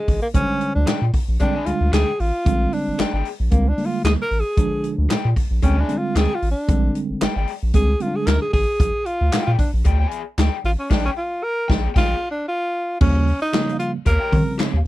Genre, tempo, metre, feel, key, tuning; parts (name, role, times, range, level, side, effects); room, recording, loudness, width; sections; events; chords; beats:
funk; 114 BPM; 4/4; swing 56% on 16ths; Bb mixolydian; A4 = 440 Hz
breathy tenor saxophone; melody; 0.0-14.6 s; Ab3 to Bb4; -23 LUFS; equal
round analog bass; bass; 0.1-14.9 s; Ab1 to Eb3; -19 LUFS; equal
swinging big-band drum kit; drums; 0.1-14.7 s; crash cymbal, handclaps, hi-hat, kick drum, snare drum; -21 LUFS; equal
mellow tine electric piano; stabs; 0.3-8.5, 13.0-14.7 s; Db3 to C5; -24 LUFS; right 2 dB; medium stereo tremolo
raw garage guitar; accompaniment; 0.9-14.7 s; G4 to Ab5; -29 LUFS; left 8 dB; overdrive
little or no reverb; -18 LUFS; side -16 dB against mid
0.0-13.0 A section; 13.0-14.9 B section
tenor saxophone solo 0.0-13.0; band accent 10.9-13.0
0.0 Bb13; 13.0 Eb9
| 0.35 0.88 1.40 1.93 | 2.46 2.99 3.52 4.05 | 4.58 5.11 5.63 6.16 | 6.69 7.22 7.75 8.27 | 8.80 9.33 9.86 10.38 | 10.91 11.43 11.96 12.49 | 13.01 13.54 14.06 14.59